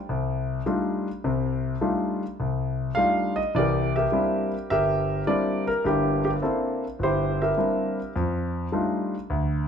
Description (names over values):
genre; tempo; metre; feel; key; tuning
solo jazz; 104 BPM; 4/4; swing 68% on 8ths; F major; A4 = 440 Hz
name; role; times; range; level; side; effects
warm concert grand piano; solo; 0.0-9.7 s; G1 to G5; -23 LUFS; left 1 dB; none
room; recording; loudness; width
moderate large studio reverb, RT60 1.1 s; band playing live in one room; -23 LUFS; side -7 dB against mid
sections
0.0-9.7 A section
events
none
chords
0.0 F13; 3.5 C9; 8.1 F13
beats
0.08 0.65 | 1.23 1.81 2.38 2.96 | 3.54 4.11 4.69 5.27 | 5.84 6.42 7.00 7.57 | 8.15 8.72 9.30